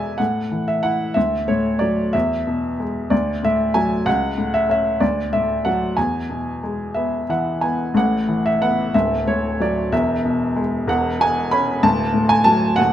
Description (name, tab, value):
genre	classical, lyrical solo piano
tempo	62 BPM (dotted quarters)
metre	6/8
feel	rubato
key	A major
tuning	A4 = 440 Hz
part	clear upright piano	solo	0.0-12.9 s	D1 to B5	-17 LUFS	equal	none
room	light reverb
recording	close, detailed microphones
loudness	-17 LUFS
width	side -11 dB against mid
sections	0.0-7.9 A section; 7.9-12.9 A section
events	upright piano fill 6.9-7.9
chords	0.2 A5; 1.2 D; 2.1 E; 3.1 D; 4.1 A/C#; 5.0 D; 6.0 E; 7.9 Asus2; 8.9 D; 9.9 E; 10.9 E69; 11.8 D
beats	| 0.19 1.17 | 2.14 3.12 | 4.07 5.01 | 5.97 6.95 | 7.94 8.94 | 9.92 10.88 | 11.83 12.78